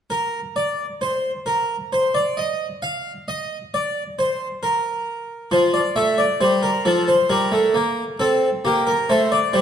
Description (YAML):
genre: classical, baroque-style two-part invention for harpsichord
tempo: 67 BPM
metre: 3/4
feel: straight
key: unclear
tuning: A4 = 440 Hz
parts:
  - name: harpsichord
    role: solo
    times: 0.1-9.6 s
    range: F3 to F5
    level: -18 LUFS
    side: equal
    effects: none
room: wet recital hall reverb, RT60 1.5 s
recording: none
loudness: -18 LUFS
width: side -8 dB against mid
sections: 0.1-9.6 A section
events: none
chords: 0.1 N.C.; 5.5 F; 7.3 Gm; 8.2 C5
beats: | 0.11 1.02 1.93 | 2.83 3.73 4.63 | 5.52 6.41 7.30 | 8.20 9.10